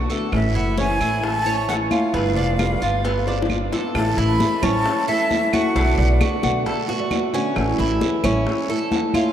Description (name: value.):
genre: latin, Cuban son and guajira.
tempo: 133 BPM.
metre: 4/4.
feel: straight.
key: A major.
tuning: A4 = 440 Hz.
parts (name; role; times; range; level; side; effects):
breathy jazz flute; melody; 0.0-6.4 s; E5 to B5; -25 LUFS; equal; none.
flamenco guitar; accompaniment; 0.0-9.3 s; B2 to F#4; -24 LUFS; left 1 dB; none.
Cuban tres; arpeggios; 0.0-9.3 s; B3 to C#5; -25 LUFS; right 2 dB; none.
upright bass; bass; 0.0-8.5 s; F1 to B1; -22 LUFS; equal; none.
bongos; percussion; 0.1-9.3 s; none; -31 LUFS; left 4 dB; none.
congas; percussion; 0.1-9.3 s; none; -30 LUFS; left 2 dB; none.
guiro; percussion; 0.1-9.3 s; none; -36 LUFS; right 7 dB; none.
claves; percussion; 0.3-9.3 s; none; -36 LUFS; right 6 dB; none.
nylon-string guitar; second line; 6.0-8.0 s; B4 to F#5; -30 LUFS; right 2 dB; none.
room: wet cathedral reverb, RT60 4.9 s.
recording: in a vast, echoing space.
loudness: -18 LUFS.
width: side -10 dB against mid.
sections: 0.0-3.9 A section; 3.9-9.3 B section.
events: drum fill 3.3-3.9.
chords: 0.3 A; 2.1 G7; 3.9 A; 5.8 Bm7; 7.6 A.